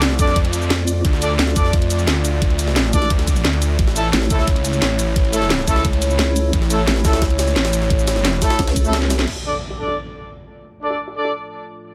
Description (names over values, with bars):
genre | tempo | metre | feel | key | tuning
dark technical drum and bass | 175 BPM | 4/4 | straight | D harmonic minor | A4 = 440 Hz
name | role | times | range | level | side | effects
dark analog pad | sustained chords | 0.0-11.9 s | A3 to D5 | -28 LUFS | equal | subtle chorus, sidechain pumping
detuned saw bass | bass | 0.0-8.4 s | A1 to F2 | -22 LUFS | equal | chorus, tube saturation
drum and bass drum kit | drums | 0.0-9.3 s | crash cymbal, hi-hat, ride cymbal, shaker, snare drum | -25 LUFS | equal | none
jungle sampler-style drum kit | drums | 0.0-11.9 s | ride cymbal, snare drum | -32 LUFS | equal | high-pass filter on cymbals, low-pass filter on cymbals, high-pass filter on snare, low-pass filter on snare
warm brass ensemble | stabs | 0.2-11.3 s | A3 to D5 | -26 LUFS | equal | low-pass filter, tape echo
electronic kick drum | drums | 0.2-8.8 s | none | -20 LUFS | equal | overdrive
vowel-sweep wobble bass | bass | 0.7-9.3 s | A1 to F2 | -21 LUFS | equal | chorus
impact | sound effects | 9.3-10.6 s | none | -36 LUFS | equal | none
room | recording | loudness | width
light reverb | none | -18 LUFS | mono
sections
0.0-9.3 A section; 9.3-11.9 B section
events
drop 0.0-9.3; drum fill 8.9-9.3; band accent 9.2; impact 9.3-10.6; filter sweep on analog synth pad 9.3-11.9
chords
0.0 Dm; 3.8 A; 9.3 Dm